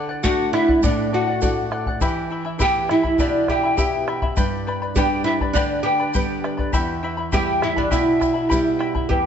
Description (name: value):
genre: andean folk, Andean ensemble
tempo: 102 BPM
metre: 2/4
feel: straight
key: E minor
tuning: A4 = 440 Hz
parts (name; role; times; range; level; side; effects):
- charango; accompaniment; 0.0-9.3 s; E4 to B5; -27 LUFS; left 4 dB; none
- nylon-string guitar; accompaniment; 0.0-9.3 s; E2 to G4; -26 LUFS; right 2 dB; none
- oud; melody; 0.2-9.3 s; D4 to G4; -20 LUFS; right 2 dB; none
- breathy polished pan flute; second line; 0.2-8.8 s; D5 to G5; -26 LUFS; left 4 dB; none
- bombo; percussion; 0.2-9.2 s; none; -25 LUFS; left 1 dB; none
- tube shaker; percussion; 0.2-8.6 s; none; -36 LUFS; right 6 dB; none
room: moderate scoring stage reverb, RT60 1.7 s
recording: nothing above 7.8 kHz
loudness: -18 LUFS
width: side -8 dB against mid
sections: 0.0-9.1 A section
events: none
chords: 0.0 D; 2.0 Em; 4.4 G; 6.7 Em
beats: 0.23 | 0.82 1.41 | 2.00 2.60 | 3.19 3.78 | 4.37 4.96 | 5.55 6.14 | 6.73 7.33 | 7.92 8.51 | 9.10